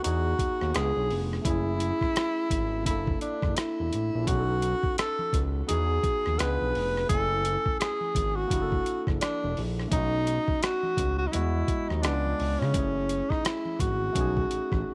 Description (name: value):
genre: R&B, neo-soul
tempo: 85 BPM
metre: 4/4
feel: swing 59% on 16ths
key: F# dorian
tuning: A4 = 440 Hz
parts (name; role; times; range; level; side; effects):
- breathy tenor saxophone; melody; 0.0-14.9 s; C#4 to B4; -31 LUFS; equal; none
- barky tine electric piano; accompaniment; 0.0-14.9 s; G3 to G#5; -37 LUFS; equal; none
- boom bap sampler-style drum kit; drums; 0.0-14.9 s; hi-hat, kick drum, rim click; -33 LUFS; equal; none
- smooth gliding synth bass; bass; 0.1-14.8 s; E1 to C#3; -32 LUFS; equal; none
- congas; percussion; 4.3-14.9 s; none; -47 LUFS; equal; none
room: little or no reverb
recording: none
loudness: -28 LUFS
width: mono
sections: 0.0-14.9 A section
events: none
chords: 0.0 Emaj9; 0.7 C#7b9; 1.4 F#m9; 2.9 F#7alt; 4.3 B9; 5.7 Emaj9; 6.4 C#7b9; 7.1 F#m9; 8.5 F#7alt; 9.9 B9; 11.3 Emaj9; 12.0 C#7b9; 12.7 F#m9; 14.2 B13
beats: 0.04 0.74 | 1.45 2.16 2.86 3.57 | 4.27 4.98 5.68 6.39 | 7.10 7.80 8.51 9.21 | 9.92 10.63 11.33 12.04 | 12.74 13.45 14.16 14.86